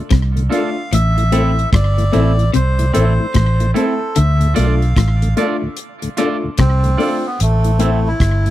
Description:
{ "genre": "roots reggae", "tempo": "74 BPM", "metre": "4/4", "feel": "swing 61% on 16ths", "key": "A minor", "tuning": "A4 = 440 Hz", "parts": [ { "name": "tonewheel organ", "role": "accompaniment", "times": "0.0-8.5 s", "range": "D2 to F4", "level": "-24 LUFS", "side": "left 2 dB", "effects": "slow rotary speaker" }, { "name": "clean electric guitar", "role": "riff", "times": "0.1-6.8 s", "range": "G2 to D3", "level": "-22 LUFS", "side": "left 6 dB", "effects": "tube saturation, tremolo" }, { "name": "vintage muted fingered electric bass", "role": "bass", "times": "0.1-8.5 s", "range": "G1 to D2", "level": "-14 LUFS", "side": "equal", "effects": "none" }, { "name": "damped 70s drum kit", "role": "drums", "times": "0.1-8.5 s", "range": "hi-hat, kick drum, rim click", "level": "-19 LUFS", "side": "equal", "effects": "none" }, { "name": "melodica", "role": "melody", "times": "0.5-8.5 s", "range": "A3 to F5", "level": "-22 LUFS", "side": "right 1 dB", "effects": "tape echo" }, { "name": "twangy electric guitar", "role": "accompaniment", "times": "0.5-8.0 s", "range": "C4 to D5", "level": "-26 LUFS", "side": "right 6 dB", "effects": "spring reverb, tape echo" }, { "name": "warm upright piano", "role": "stabs", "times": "0.5-8.0 s", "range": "A3 to A4", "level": "-21 LUFS", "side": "left 4 dB", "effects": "none" } ], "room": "little or no reverb", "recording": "dry, close 1970s-style studio recording", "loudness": "-13 LUFS", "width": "side -14 dB against mid", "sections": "0.0-7.4 A section; 7.4-8.5 B section", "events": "none", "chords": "0.0 Dm; 0.9 Am; 4.2 Dm; 7.4 Am" }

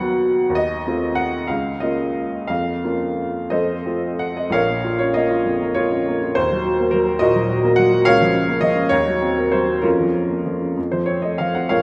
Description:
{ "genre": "classical, romantic character piece for solo piano", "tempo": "56-73 BPM (dotted quarters)", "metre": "6/8", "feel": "rubato", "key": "Bb minor", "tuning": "A4 = 438 Hz", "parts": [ { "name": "clear upright piano", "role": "solo", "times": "0.0-11.8 s", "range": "Bb1 to B5", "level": "-20 LUFS", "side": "equal", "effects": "none" } ], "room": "wet church reverb, RT60 2.7 s", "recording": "recorded in a church or concert hall", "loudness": "-20 LUFS", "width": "mono", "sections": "0.0-4.5 A section; 4.5-11.8 B section", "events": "none", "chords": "0.0 B/D#; 0.6 F7/Eb; 1.5 Bbm/Db; 2.5 Bbm/F; 3.5 F; 4.5 Bbm; 6.4 Ebm; 8.1 Bbm/Db; 8.9 Cm7b5/Eb; 9.8 Bbm/F; 10.8 F" }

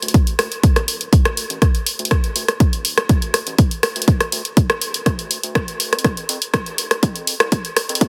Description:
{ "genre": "melodic techno", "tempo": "122 BPM", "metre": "4/4", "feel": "straight", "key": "unclear", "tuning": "A4 = 439 Hz", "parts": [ { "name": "round analog bass", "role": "bass", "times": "0.0-8.1 s", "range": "D1 to F2", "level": "-37 LUFS", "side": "equal", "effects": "sidechain pumping, high-pass filter" }, { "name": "punchy analog drum machine", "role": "drums", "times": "0.0-8.1 s", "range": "hi-hat, rim click", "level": "-22 LUFS", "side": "equal", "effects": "sidechain pumping on hats, high-pass filter on hats, soft clipping on snare, high-pass filter on snare" }, { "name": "electronic kick drum", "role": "drums", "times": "0.1-8.1 s", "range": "none", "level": "-17 LUFS", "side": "equal", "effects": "overdrive" } ], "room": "light reverb", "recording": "dense, heavily limited modern master, high-pass filter", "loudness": "-18 LUFS", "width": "mono", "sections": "0.0-8.1 A section", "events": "build-up 0.0-8.1; filter sweep 0.0-8.1", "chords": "none" }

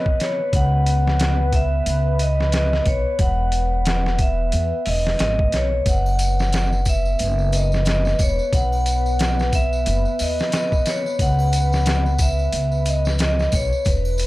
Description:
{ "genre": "trip hop", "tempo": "90 BPM", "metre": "4/4", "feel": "swing 59% on 16ths", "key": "unclear", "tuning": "A4 = 441 Hz", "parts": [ { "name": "vibraphone with medium hard mallets", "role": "melody", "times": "0.0-14.3 s", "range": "B4 to F#5", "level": "-23 LUFS", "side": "right 1 dB", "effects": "tape echo" }, { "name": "deep dark ambient pad", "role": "sustained chords", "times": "0.0-14.3 s", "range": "B4", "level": "-30 LUFS", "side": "left 3 dB", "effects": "chorus, built-in reverb, vintage 12-bit sampler grit" }, { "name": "trip hop sampler-style drum kit", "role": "drums", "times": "0.1-14.3 s", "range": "hi-hat, kick drum, snare drum", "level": "-22 LUFS", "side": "equal", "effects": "small room ambience" }, { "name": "upright bass", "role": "bass", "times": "0.5-14.3 s", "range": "E1 to E2", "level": "-20 LUFS", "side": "equal", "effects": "transformer saturation" }, { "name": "tambourine and triangle", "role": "percussion", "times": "5.9-14.3 s", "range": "none", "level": "-34 LUFS", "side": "left 1 dB", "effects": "none" } ], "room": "small room ambience", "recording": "dry, gritty hardware recording", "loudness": "-17 LUFS", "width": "side -18 dB against mid", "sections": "0.0-14.3 A section", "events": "none", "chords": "0.0 B; 0.5 C#m7; 3.2 E; 5.9 C#m11 (rootless); 8.5 B; 11.2 C#m7" }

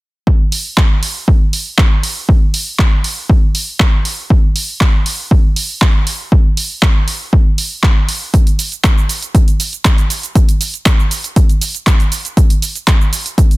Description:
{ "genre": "house", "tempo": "119 BPM", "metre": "4/4", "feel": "straight", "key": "none", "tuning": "none", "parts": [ { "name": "electronic kick drum", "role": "drums", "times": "0.3-13.5 s", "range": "none", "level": "-10 LUFS", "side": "equal", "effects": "overdrive, small room ambience" }, { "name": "punchy analog drum machine", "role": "drums", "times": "0.5-13.6 s", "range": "cabasa, handclaps, hi-hat", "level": "-18 LUFS", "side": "right 1 dB", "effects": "overdrive, small room ambience" } ], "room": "digital ambience", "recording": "dense, heavily limited modern master", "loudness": "-11 LUFS", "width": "side -20 dB against mid", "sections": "0.3-13.6 A section", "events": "none", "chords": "none" }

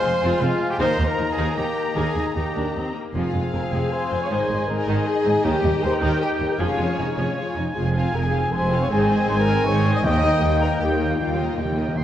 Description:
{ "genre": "cinematic", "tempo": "156 BPM", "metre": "3/4", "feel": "straight", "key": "Eb mixolydian from 3.1 s", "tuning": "A4 = 440 Hz", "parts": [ { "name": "warm symphonic violin section", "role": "melody", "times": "0.0-12.0 s", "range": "C5 to Bb5", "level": "-34 LUFS", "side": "left 4 dB", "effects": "none" }, { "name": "clear oboe", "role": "second line", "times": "0.0-12.0 s", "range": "F5 to C6", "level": "-34 LUFS", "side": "equal", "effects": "none" }, { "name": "mellow hollow silver concert flute", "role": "second line", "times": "0.0-12.0 s", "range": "Db5 to Eb6", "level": "-32 LUFS", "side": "left 1 dB", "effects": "none" }, { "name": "rich studio violin section", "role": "second line", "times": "0.0-12.0 s", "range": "Db4 to C6", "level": "-35 LUFS", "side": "left 4 dB", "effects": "none" }, { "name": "warm clarinet", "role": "second line", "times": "0.0-12.0 s", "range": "Bb3 to F5", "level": "-36 LUFS", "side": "left 2 dB", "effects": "none" }, { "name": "clear symphonic viola section", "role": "accompaniment", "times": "0.0-12.0 s", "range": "Eb3 to C5", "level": "-31 LUFS", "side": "equal", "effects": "none" }, { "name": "dark French horn section", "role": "sustained chords", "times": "0.0-12.0 s", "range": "Db4 to Eb5", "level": "-26 LUFS", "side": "left 2 dB", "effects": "none" }, { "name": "warm trombone section", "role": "sustained chords", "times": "0.0-12.0 s", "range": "Eb3 to Eb4", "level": "-32 LUFS", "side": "right 2 dB", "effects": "none" }, { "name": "concert harp", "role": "arpeggios", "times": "0.0-12.0 s", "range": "Ab2 to Eb6", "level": "-33 LUFS", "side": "left 8 dB", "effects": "none" }, { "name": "warm trumpet", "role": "stabs", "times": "0.0-12.0 s", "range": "F4 to Ab5", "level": "-29 LUFS", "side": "equal", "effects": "none" }, { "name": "warm symphonic cello section", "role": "bass", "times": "0.0-12.0 s", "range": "Eb2 to Ab2", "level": "-27 LUFS", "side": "right 1 dB", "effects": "none" }, { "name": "warm symphonic double bass section", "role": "bass", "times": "0.0-12.0 s", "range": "F1 to Eb2", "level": "-26 LUFS", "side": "right 2 dB", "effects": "none" }, { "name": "timpani", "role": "percussion", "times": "10.0-12.0 s", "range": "Eb3", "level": "-28 LUFS", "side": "equal", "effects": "none" } ], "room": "moderate scoring stage reverb, RT60 2.0 s", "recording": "worn, warbling old tape, cassette tape, warbly pitch drift", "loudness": "-19 LUFS", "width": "side -11 dB against mid", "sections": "0.0-3.1 A section; 3.1-12.0 B section", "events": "timpani fill 11.2-12.0", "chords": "0.0 Fm; 0.8 Eb; 3.1 Fm; 4.3 Ab; 5.4 Eb; 6.6 Db/F; 7.8 Fm; 8.9 Ab; 10.0 Eb" }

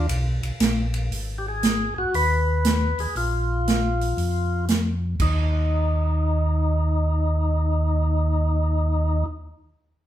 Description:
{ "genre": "soul jazz organ trio", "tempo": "118 BPM", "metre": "4/4", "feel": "swing 66% on 8ths", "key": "unclear", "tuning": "A4 = 440 Hz", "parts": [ { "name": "percussive tonewheel organ", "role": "melody", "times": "0.0-9.3 s", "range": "Eb4 to Cb5", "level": "-26 LUFS", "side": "left 2 dB", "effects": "slow rotary speaker" }, { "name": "mellow tonewheel organ", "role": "bass", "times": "0.0-9.2 s", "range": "Ab1 to F2", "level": "-22 LUFS", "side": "equal", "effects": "slow rotary speaker" }, { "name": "swinging big-band drum kit", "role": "drums", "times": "0.1-5.4 s", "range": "crash cymbal, hi-hat, kick drum, ride cymbal, snare drum", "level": "-25 LUFS", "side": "right 2 dB", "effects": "none" } ], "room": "wet large studio reverb, RT60 0.9 s", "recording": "band playing live in one room", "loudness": "-20 LUFS", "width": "side -12 dB against mid", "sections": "0.0-1.1 A section; 1.1-5.2 B section; 5.2-9.3 C section", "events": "none", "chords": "0.0 N.C.; 1.1 Abm; 3.2 Bb5; 5.2 N.C." }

